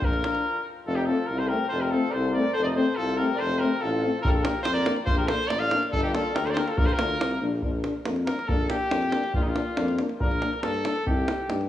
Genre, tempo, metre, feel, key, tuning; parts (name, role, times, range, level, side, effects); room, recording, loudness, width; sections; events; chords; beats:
balkan folk, Balkan brass band; 142 BPM; 2/4; straight; Bb major; A4 = 439 Hz
clear trumpet; melody; 0.0-11.7 s; Eb4 to F5; -28 LUFS; left 1 dB; cassette tape
mellow flugelhorn; second line; 0.0-7.4 s; D4 to D5; -32 LUFS; left 3 dB; cassette tape, tape echo
warm trombone; accompaniment; 0.0-11.6 s; F3 to Bb3; -36 LUFS; right 2 dB; cassette tape
warm tuba; bass; 0.0-11.7 s; F1 to G2; -29 LUFS; left 1 dB
davul; percussion; 0.0-0.4, 4.2-11.7 s; -28 LUFS; right 1 dB
warm euphonium; accompaniment; 0.2-11.6 s; C4 to Eb4; -31 LUFS; left 4 dB; cassette tape
light reverb, studio ambience; home recording on cassette, studio reverb; -23 LUFS; side -12 dB against mid
0.9-7.6 A section; 7.6-11.7 B section
stop 0.4-0.9; trumpet solo 7.6-11.7
0.0 Bb; 0.9 F; 4.2 Bb; 5.9 Gm; 6.8 Bb; 11.1 Cm
| 0.03 0.45 | 0.87 1.29 | 1.71 2.13 | 2.55 2.97 | 3.40 3.82 | 4.24 4.66 | 5.08 5.50 | 5.93 6.35 | 6.78 7.20 | 7.63 8.06 | 8.48 8.91 | 9.34 9.77 | 10.20 10.63 | 11.06 11.49